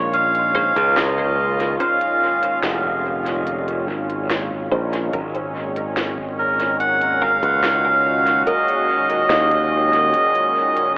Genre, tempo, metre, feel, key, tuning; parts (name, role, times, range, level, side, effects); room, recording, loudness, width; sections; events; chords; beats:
ambient dub; 72 BPM; 4/4; straight; Bb minor; A4 = 437 Hz
melodica; melody; 0.0-10.9 s; Bb4 to Gb5; -17 LUFS; right 1 dB; dub echo
warm analog pad; sustained chords; 0.0-11.0 s; Bb2 to Gb4; -24 LUFS; equal; chorus
modern bright fingered electric bass; bass; 0.0-10.1 s; F1 to Eb2; -24 LUFS; equal
organic electronic drum kit; drums; 0.1-10.9 s; hi-hat, snare drum; -28 LUFS; equal; dub echo
filtered dub chord stab; stabs; 0.5-8.6 s; Gb3 to C5; -28 LUFS; equal
electronic kick drum; drums; 0.6-9.7 s; -41 LUFS; equal
wet spring reverb, RT60 2.1 s; echo-heavy mix, vinyl crackle, telephone sound; -16 LUFS; side -25 dB against mid
0.0-11.0 A section
0.0 Bbm11; 5.1 Ab9sus4
0.13 0.97 | 1.80 2.63 3.47 4.30 | 5.13 5.97 6.80 7.63 | 8.47 9.30 10.13 10.97